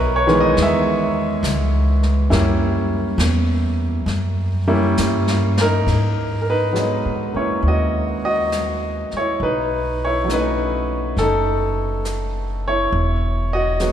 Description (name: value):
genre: jazz ballad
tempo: 68 BPM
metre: 4/4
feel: swing 68% on 8ths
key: G# minor from 5.9 s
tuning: A4 = 439 Hz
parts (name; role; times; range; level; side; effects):
- warm grand piano; accompaniment; 0.0-13.9 s; D#3 to E5; -19 LUFS; equal; none
- upright bass; bass; 0.0-13.9 s; E1 to A#2; -21 LUFS; equal; none
- jazz brush drum kit; drums; 0.3-13.9 s; brushed snare drum, hi-hat, kick drum, ride cymbal, snare drum; -28 LUFS; left 2 dB; none
room: wet church reverb, RT60 3.3 s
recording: recorded in a church or concert hall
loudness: -17 LUFS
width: side -10 dB against mid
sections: 0.0-5.9 A section; 5.9-13.9 B section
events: drum fill 5.0-5.9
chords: 0.0 C#m7; 2.3 F#7b9; 5.9 G#m9; 9.4 B7; 12.9 Emaj9